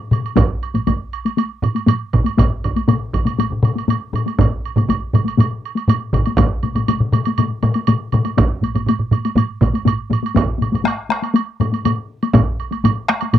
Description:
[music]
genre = japanese traditional, taiko drum ensemble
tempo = 120 BPM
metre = 4/4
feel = straight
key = none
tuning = none
[part]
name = taiko ensemble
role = percussion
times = 0.1-13.4 s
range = none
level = -18 LUFS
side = left 2 dB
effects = none
[part]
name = woodblock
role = percussion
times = 0.1-13.4 s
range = none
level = -26 LUFS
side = right 14 dB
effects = none
[part]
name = taiko ensemble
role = percussion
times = 0.4-13.4 s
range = none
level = -19 LUFS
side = left 3 dB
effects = none
[part]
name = taiko ensemble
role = percussion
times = 0.4-13.4 s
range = none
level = -18 LUFS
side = right 2 dB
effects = none
[part]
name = taiko ensemble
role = percussion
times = 0.4-12.5 s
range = none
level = -19 LUFS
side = right 2 dB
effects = none
[sound]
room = moderate booth ambience, RT60 0.2 s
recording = dry, close 1970s-style studio recording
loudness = -15 LUFS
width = side -11 dB against mid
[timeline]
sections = 0.0-6.4 A section; 6.4-13.4 B section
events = none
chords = none

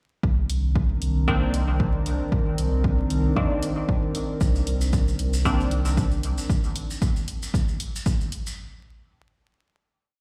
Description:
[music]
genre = dub techno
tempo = 115 BPM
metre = 4/4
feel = swing 56% on 16ths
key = C minor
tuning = A4 = 437 Hz
[part]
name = warbly tape-like pad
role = sustained chords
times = 0.5-6.5 s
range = Eb3 to Bb4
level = -32 LUFS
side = equal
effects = chorus, built-in reverb, phaser, sidechain pumping
[part]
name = warm sub bass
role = bass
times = 0.2-6.3 s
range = C2 to F2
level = -26 LUFS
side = equal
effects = sidechain pumping
[part]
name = electronic kick drum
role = drums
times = 0.2-8.2 s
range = none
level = -27 LUFS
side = equal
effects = overdrive
[part]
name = electronic hi-hat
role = drums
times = 0.5-8.4 s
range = none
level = -39 LUFS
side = equal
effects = overdrive
[part]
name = filtered dub chord stab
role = stabs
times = 1.3-5.8 s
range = Eb3 to D4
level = -32 LUFS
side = equal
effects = chorus, phaser, sidechain pumping, dub echo
[part]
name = maracas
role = percussion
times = 4.4-8.6 s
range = none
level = -40 LUFS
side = equal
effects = none
[sound]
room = light reverb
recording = played on a big sound system in a bare room, large studio reverb, vinyl crackle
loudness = -24 LUFS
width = mono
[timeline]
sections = 0.2-8.6 groove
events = none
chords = 0.2 Cm9

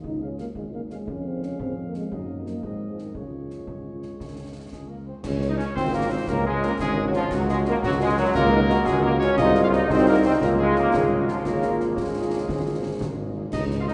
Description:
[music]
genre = military-style march for wind band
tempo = 116 BPM (dotted quarters)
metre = 6/8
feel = straight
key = Db major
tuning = A4 = 440 Hz
[part]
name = mellow tuba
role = bass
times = 0.0-13.9 s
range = Ab1 to Ab2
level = -29 LUFS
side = equal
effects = none
[part]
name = concert bass drum, concert snare drum and clash cymbals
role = drums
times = 0.0-13.9 s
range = none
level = -36 LUFS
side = equal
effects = none
[part]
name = mellow euphonium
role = second line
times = 0.1-13.2 s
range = Db3 to Gb4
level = -30 LUFS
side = equal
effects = none
[part]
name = warm cornet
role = melody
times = 0.2-13.9 s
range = F4 to F5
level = -36 LUFS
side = equal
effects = none
[part]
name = dark French horn section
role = accompaniment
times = 0.2-13.9 s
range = Ab3 to Eb5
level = -33 LUFS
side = equal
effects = none
[part]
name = dark trombone section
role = sustained chords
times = 4.7-13.9 s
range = F3 to F4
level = -28 LUFS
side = equal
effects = none
[sound]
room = wet cathedral reverb, RT60 6.1 s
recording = recorded in a church or concert hall, nothing above 10.7 kHz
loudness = -23 LUFS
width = mono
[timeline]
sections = 0.0-5.2 A section; 5.2-13.9 A section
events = none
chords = 0.0 Db; 1.1 Db/F; 2.1 Ebm7/Gb; 2.6 Ab; 3.2 Db; 7.3 Ebm7/Db; 9.4 Ab7/C; 10.4 Db; 11.5 Db/Ab; 12.5 Ab

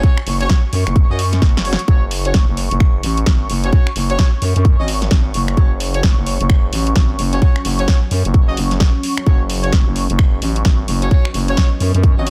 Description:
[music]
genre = bass house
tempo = 130 BPM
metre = 4/4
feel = swing 61% on 16ths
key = unclear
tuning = A4 = 439 Hz
[part]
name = warm horn section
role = stabs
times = 0.0-12.3 s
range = C#4 to D#5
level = -28 LUFS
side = equal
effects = sidechain pumping, digital delay
[part]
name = electronic kick drum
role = drums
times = 0.0-12.1 s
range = none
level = -15 LUFS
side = equal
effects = none
[part]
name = house drum kit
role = drums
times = 0.0-12.3 s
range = finger snaps, hi-hat, snare drum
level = -25 LUFS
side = equal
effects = soft clipping on snare
[part]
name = airy breathy pad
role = texture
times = 0.0-12.3 s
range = C#6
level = -30 LUFS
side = equal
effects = chorus, sidechain pumping
[part]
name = growling FM bass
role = bass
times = 0.3-12.3 s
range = F#1 to F#2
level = -21 LUFS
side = equal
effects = tube saturation, sidechain pumping
[part]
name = deep dark ambient pad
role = sustained chords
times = 4.4-12.3 s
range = F#3 to F#5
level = -29 LUFS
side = equal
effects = chorus, built-in reverb, sidechain pumping
[sound]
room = little or no reverb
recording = dense, heavily limited modern master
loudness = -15 LUFS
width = mono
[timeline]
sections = 0.0-12.3 A section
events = drum fill 1.4-1.9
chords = 0.0 F#5

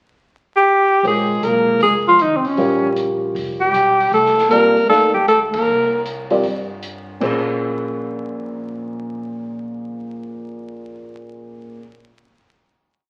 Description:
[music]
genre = modal jazz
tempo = 155 BPM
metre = 4/4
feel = swing 66% on 8ths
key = Bb dorian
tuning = A4 = 440 Hz
[part]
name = breathy alto saxophone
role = melody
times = 0.6-6.0 s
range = C4 to Bb4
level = -16 LUFS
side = equal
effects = none
[part]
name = dark concert grand piano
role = accompaniment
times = 1.0-11.8 s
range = Bb2 to F5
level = -25 LUFS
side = equal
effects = none
[part]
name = upright bass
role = bass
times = 1.0-11.7 s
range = F1 to G2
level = -38 LUFS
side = equal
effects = none
[part]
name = open jazz drum kit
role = drums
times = 1.0-7.3 s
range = crash cymbal, hi-hat, kick drum, ride cymbal, snare drum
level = -36 LUFS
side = equal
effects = none
[part]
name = dark bass clarinet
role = second line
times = 1.1-6.0 s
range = C3 to Bb3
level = -28 LUFS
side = equal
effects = none
[sound]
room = wet large studio reverb, RT60 1.2 s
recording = very old 78 rpm record, vinyl crackle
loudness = -17 LUFS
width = mono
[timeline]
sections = 0.0-1.0 pickup bar; 1.0-7.2 A section; 7.2-10.3 final chord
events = band accent 5.5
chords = 0.0 N.C.; 1.0 Bbm9; 4.1 Cm9; 7.2 Bbm9

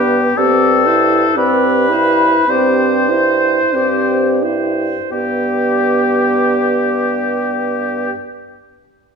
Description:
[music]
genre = classical, slow romantic movement for wind quintet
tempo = 41-63 BPM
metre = 4/4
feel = rubato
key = G major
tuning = A4 = 437 Hz
[part]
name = warm oboe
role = second line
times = 0.0-8.1 s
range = G4 to C5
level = -16 LUFS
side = left 3 dB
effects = none
[part]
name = bright clarinet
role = accompaniment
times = 0.0-8.1 s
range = G4 to C5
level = -21 LUFS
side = right 4 dB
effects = none
[part]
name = mellow French horn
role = accompaniment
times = 0.0-8.1 s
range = B3 to E4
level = -18 LUFS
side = equal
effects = none
[part]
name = warm bassoon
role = bass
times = 0.0-8.1 s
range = G2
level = -19 LUFS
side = right 3 dB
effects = none
[sound]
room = wet recital hall reverb, RT60 1.7 s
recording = minimal, uncompressed stereo recording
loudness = -12 LUFS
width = side -6 dB against mid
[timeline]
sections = 0.0-5.1 A section; 5.1-9.2 B section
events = slowing down 0.0-5.1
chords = 0.4 C/G; 5.1 G

